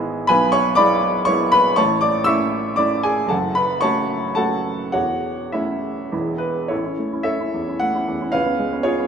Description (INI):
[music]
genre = classical, romantic character piece for solo piano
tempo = 99-123 BPM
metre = 3/4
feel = rubato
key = A major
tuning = A4 = 440 Hz
[part]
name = clear upright piano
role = solo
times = 0.0-9.1 s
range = E1 to E6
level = -17 LUFS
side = equal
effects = none
[sound]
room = wet recital hall reverb, RT60 1.4 s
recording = minimal, uncompressed stereo recording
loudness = -17 LUFS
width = side -7 dB against mid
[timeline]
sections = 0.0-6.7 A section; 6.7-9.1 B section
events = none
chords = 0.3 E7/B; 1.8 A; 3.3 F#m; 4.9 A/E; 6.1 E; 6.7 A; 8.3 C#7